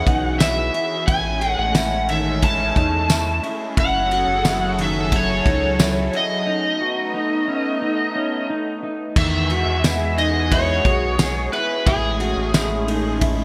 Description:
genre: dream pop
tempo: 89 BPM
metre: 4/4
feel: straight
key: E major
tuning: A4 = 440 Hz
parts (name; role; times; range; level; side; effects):
- overdriven slide guitar; melody; 0.0-13.2 s; G#4 to A5; -25 LUFS; equal; lush chorus, digital delay
- phased analog pad; sustained chords; 0.0-13.4 s; E3 to A4; -29 LUFS; equal; phaser, chorus
- mellow electric guitar; arpeggios; 0.0-13.4 s; D#3 to G#4; -28 LUFS; equal; subtle chorus, digital delay
- round analog bass; bass; 0.0-13.4 s; F#1 to E2; -27 LUFS; equal; none
- loose indie drum kit; drums; 0.1-13.4 s; crash cymbal, kick drum, ride cymbal, snare drum, tambourine; -25 LUFS; equal; gated reverb
room: moderate lush hall reverb, RT60 2.1 s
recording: bright 1980s-style digital production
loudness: -20 LUFS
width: mono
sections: 0.0-9.2 A section; 9.2-13.4 A section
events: break 6.5-9.2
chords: 0.0 Emaj7; 1.1 Amaj7; 3.8 F#m7; 6.5 B9; 9.2 Emaj7; 11.9 Amaj7

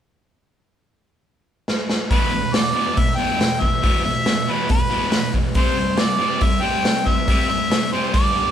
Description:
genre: garage rock duo or trio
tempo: 139 BPM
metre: 4/4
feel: straight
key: E minor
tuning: A4 = 437 Hz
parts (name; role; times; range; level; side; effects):
- raw garage drum kit; drums; 1.7-8.2 s; hi-hat, kick drum, snare drum; -20 LUFS; equal; none
- clear harmonica; melody; 2.1-8.5 s; B4 to G5; -22 LUFS; right 1 dB; overdrive
- fuzz guitar; riff; 2.1-8.5 s; E2 to C4; -23 LUFS; equal; distortion
room: light reverb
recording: band playing live in one room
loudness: -17 LUFS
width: side -9 dB against mid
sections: 0.4-2.1 A section; 2.1-8.5 B section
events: drum fill 1.7-2.1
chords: 0.4 N.C.; 2.1 E5; 5.5 C

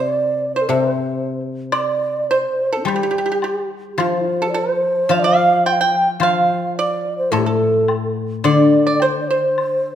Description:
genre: chinese traditional, Chinese chamber ensemble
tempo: 107 BPM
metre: 4/4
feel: rubato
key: C zhi mode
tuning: A4 = 442 Hz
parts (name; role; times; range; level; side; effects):
- low xiao; melody; 0.0-9.9 s; C4 to G5; -19 LUFS; right 2 dB; none
- pipa; second line; 0.0-9.9 s; F4 to G5; -21 LUFS; right 3 dB; none
- guzheng; accompaniment; 0.0-9.9 s; A2 to G3; -20 LUFS; left 4 dB; none
- woodblock; percussion; 1.7-9.7 s; none; -27 LUFS; left 4 dB; none
room: wet recital hall reverb, RT60 1.7 s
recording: minimal, uncompressed stereo recording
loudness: -15 LUFS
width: side -10 dB against mid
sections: 0.0-1.7 A section; 1.7-9.9 B section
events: none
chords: none

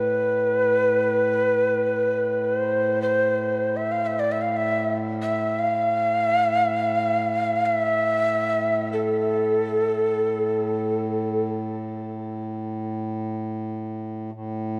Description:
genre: world meditative, free-time meditation music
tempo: free time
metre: none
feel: none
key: A minor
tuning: A4 = 437 Hz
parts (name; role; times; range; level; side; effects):
- breathy mellow Native American-style cedar flute; melody; 0.0-11.5 s; A4 to F5; -24 LUFS; equal; shimmer reverb
- hand-pumped harmonium; drone; 0.0-14.8 s; A2; -32 LUFS; equal; none
room: wet church reverb, RT60 3.5 s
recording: none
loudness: -24 LUFS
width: mono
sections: 0.0-14.3 A section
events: none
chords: none

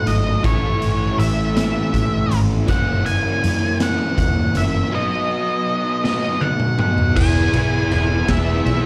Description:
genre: indie rock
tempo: 54 BPM (dotted quarters)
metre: 6/8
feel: straight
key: E major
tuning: A4 = 435 Hz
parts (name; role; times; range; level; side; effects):
- octave-fuzz lead guitar; melody; 0.0-8.9 s; C#5 to G#5; -26 LUFS; equal; distortion, slapback echo
- overdriven electric guitar; riff; 0.0-8.9 s; E3 to G#4; -27 LUFS; equal; ensemble chorus, slapback echo
- raw garage guitar; riff; 0.0-8.9 s; E3 to G#4; -28 LUFS; equal; overdrive, slapback echo
- vintage muted fingered electric bass; bass; 0.1-8.9 s; E1 to F#2; -23 LUFS; equal; none
- raw garage drum kit; drums; 0.1-8.8 s; crash cymbal, hi-hat, kick drum, ride cymbal, snare drum, toms; -24 LUFS; equal; none
- percussive tonewheel organ; sustained chords; 7.2-8.9 s; E4 to B5; -33 LUFS; equal; none
room: light reverb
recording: live gig heard through the venue's PA, club reverb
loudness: -19 LUFS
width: mono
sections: 0.0-7.2 A section; 7.2-8.9 B section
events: drum fill 6.0-7.2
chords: 0.4 A; 2.7 F#7; 4.9 B; 7.2 E

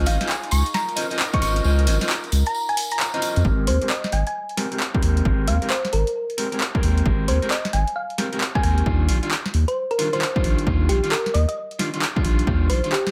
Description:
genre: UK garage, two-step garage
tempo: 133 BPM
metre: 4/4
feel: swing 64% on 16ths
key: Ab major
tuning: A4 = 440 Hz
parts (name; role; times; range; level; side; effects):
- warm analog pad; sustained chords; 0.0-3.4 s; Eb4 to Bb4; -38 LUFS; equal; chorus, tremolo, sidechain pumping
- electric guitar at the edge of break-up; stabs; 0.0-12.9 s; Eb3 to Eb5; -29 LUFS; equal; low-pass filter, digital delay
- saturated sub bass; bass; 0.0-12.8 s; Ab1 to F2; -22 LUFS; equal; tube saturation
- thumb-piano-like synth pluck; melody; 0.1-13.1 s; G4 to Db6; -28 LUFS; equal; chorus, digital delay
- punchy analog drum machine; drums; 0.1-13.1 s; handclaps, hi-hat, snare drum; -29 LUFS; equal; overdrive
- tambourine; percussion; 0.1-3.4 s; none; -35 LUFS; equal; none
- electronic kick drum; drums; 1.3-12.6 s; none; -26 LUFS; equal; overdrive
room: light reverb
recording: none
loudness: -22 LUFS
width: mono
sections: 0.0-3.4 A section; 3.4-13.1 B section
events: drop 0.0-3.4; kick drops out 1.6-3.4; filter sweep on clean electric guitar 3.4-13.1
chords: 0.0 Dbmaj9; 3.4 Abmaj9; 8.9 Ebmaj9

